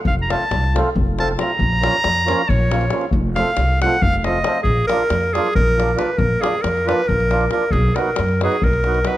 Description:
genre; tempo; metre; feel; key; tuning
balkan folk, Balkan wedding band; 274 BPM (eighths); 7/8; straight; F phrygian dominant, Bb phrygian dominant from 4.6 s; A4 = 441 Hz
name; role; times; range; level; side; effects
clear clarinet; melody; 0.1-9.2 s; Ab4 to Bb5; -20 LUFS; equal; none
upright bass; bass; 0.1-9.0 s; F1 to F#2; -21 LUFS; equal; none
davul; percussion; 0.1-9.1 s; none; -23 LUFS; left 2 dB; none
mellow accordion; accompaniment; 0.3-9.2 s; F3 to F#4; -24 LUFS; right 3 dB; none
room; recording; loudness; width
light reverb; close, detailed microphones; -16 LUFS; side -14 dB against mid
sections
0.0-4.6 A section; 4.6-9.2 B section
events
clarinet solo 0.0-4.6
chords
0.0 F; 1.6 Bbm; 3.1 F; 4.6 Bb; 7.7 B

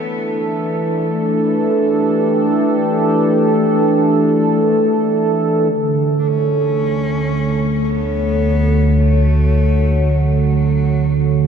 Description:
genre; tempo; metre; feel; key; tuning
ambient; free time; none; none; unclear; A4 = 439 Hz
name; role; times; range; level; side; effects
warm analog pad; sustained chords; 0.0-11.5 s; D3 to C#5; -14 LUFS; right 1 dB; chorus
deep rumbling drone; bass; 7.3-11.5 s; D2; -18 LUFS; left 1 dB; built-in reverb
clear cello; melody; 6.2-11.5 s; F#3 to D4; -30 LUFS; left 1 dB; ping-pong delay
room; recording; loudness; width
wet huge ambient reverb, RT60 7.4 s; none; -13 LUFS; side -7 dB against mid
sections
0.0-5.7 A section; 5.7-11.5 B section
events
fade-in on cello 5.7-11.5; filter sweep on analog synth pad 5.7-11.5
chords
0.0 A7sus4; 5.7 Dmaj7

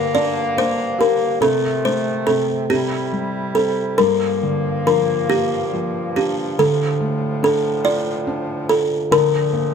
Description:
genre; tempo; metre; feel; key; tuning
children's music, lullaby; 47 BPM (dotted quarters); 6/8; rubato; unclear; A4 = 438 Hz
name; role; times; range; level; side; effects
felt-muted upright piano; accompaniment; 0.0-9.7 s; G2 to G4; -23 LUFS; right 1 dB; none
bright woodwind section; sustained chords; 0.0-9.7 s; D2 to E4; -26 LUFS; right 1 dB; none
buzzing kalimba; melody; 0.1-9.7 s; G4 to D5; -18 LUFS; left 1 dB; none
room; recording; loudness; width
moderate recital hall reverb, RT60 1.8 s; none; -17 LUFS; side -6 dB against mid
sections
0.0-9.7 A section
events
none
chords
0.0 Gm; 1.4 F/C; 2.7 C; 4.0 Gm7; 6.6 Dm; 9.1 Bb/D

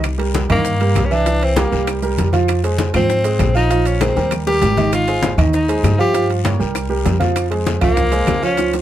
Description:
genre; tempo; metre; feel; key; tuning
Afro-Cuban jazz; 197 BPM; 4/4; straight; C minor; A4 = 445 Hz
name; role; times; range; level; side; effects
upright bass; bass; 0.0-8.8 s; Ab1 to Ab2; -19 LUFS; equal; none
bongos; percussion; 0.0-8.8 s; none; -28 LUFS; left 8 dB; none
claves; percussion; 0.0-8.4 s; none; -33 LUFS; left 8 dB; none
congas; percussion; 0.0-8.8 s; none; -23 LUFS; left 2 dB; none
guiro; percussion; 0.0-8.8 s; none; -35 LUFS; left 9 dB; none
maracas; percussion; 0.0-8.8 s; none; -36 LUFS; right 8 dB; none
timbales; percussion; 0.0-8.8 s; none; -29 LUFS; right 6 dB; none
warm grand piano; accompaniment; 0.2-8.8 s; Eb3 to F5; -19 LUFS; right 4 dB; none
edgy tenor saxophone; melody; 0.5-8.7 s; Bb3 to G4; -19 LUFS; left 2 dB; none
room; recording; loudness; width
light reverb; dark, warm production; -14 LUFS; side -12 dB against mid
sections
0.0-8.8 A section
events
drum fill 4.0-4.9, 8.6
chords
0.0 Cm7; 1.3 C7; 2.5 Fmadd11; 3.7 Bb5; 4.3 Eb; 4.9 Ab6; 6.1 Gm7b5; 6.8 C5; 7.4 Fmadd11

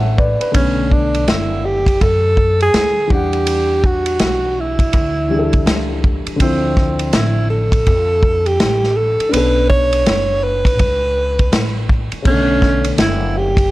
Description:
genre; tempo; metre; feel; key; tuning
hip hop, jazz-hop; 82 BPM; 4/4; swing 63% on 16ths; B minor; A4 = 441 Hz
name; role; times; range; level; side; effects
dark grand piano; accompaniment; 0.0-13.7 s; C#3 to F#5; -22 LUFS; left 2 dB; none
upright bass; bass; 0.0-13.7 s; F#1 to F#2; -20 LUFS; equal; none
vintage drum kit; drums; 0.2-13.7 s; crash cymbal, hi-hat, kick drum, ride cymbal, snare drum; -17 LUFS; equal; none
breathy alto saxophone; melody; 0.6-13.7 s; C4 to C#5; -17 LUFS; right 1 dB; none
room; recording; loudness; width
light reverb, small room ambience; dark, warm production; -13 LUFS; side -17 dB against mid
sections
0.5-12.3 A section; 12.3-13.7 A section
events
grand piano fill 0.0-0.5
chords
0.0 Bm9; 3.1 Em9; 6.4 Dm9; 9.3 Bm9

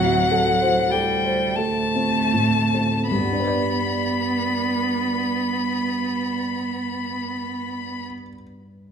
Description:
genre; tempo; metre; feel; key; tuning
classical, slow romantic movement for piano trio; 37-52 BPM; 3/4; rubato; G major; A4 = 440 Hz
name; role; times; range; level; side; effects
clear violin; melody; 0.0-8.0 s; F#5 to B5; -24 LUFS; left 5 dB; none
clear cello; second line; 0.0-8.1 s; F#3 to B3; -24 LUFS; right 5 dB; none
dark grand piano; accompaniment; 0.0-8.9 s; D2 to D5; -26 LUFS; equal; none
room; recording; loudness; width
wet recital hall reverb, RT60 1.4 s; minimal, uncompressed stereo recording; -20 LUFS; side -7 dB against mid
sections
0.0-3.1 A section; 3.1-7.4 B section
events
slowing down 0.0-3.1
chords
0.0 D9; 3.1 G

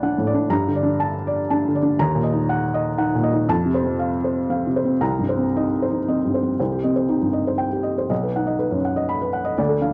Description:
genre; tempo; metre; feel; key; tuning
neoclassical minimalist piano; 120 BPM; 3/4; rubato; C dorian; A4 = 439 Hz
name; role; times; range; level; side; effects
felt-muted upright piano; solo; 0.0-9.9 s; B1 to B5; -21 LUFS; equal; none
room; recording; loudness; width
small room ambience; dry, close 1970s-style studio recording; -21 LUFS; mono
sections
0.0-6.6 A section; 6.6-9.9 B section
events
none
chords
0.0 D; 0.5 Gmadd9; 2.0 Ebm; 3.5 F; 5.0 Cm7; 6.6 Cm; 8.1 B

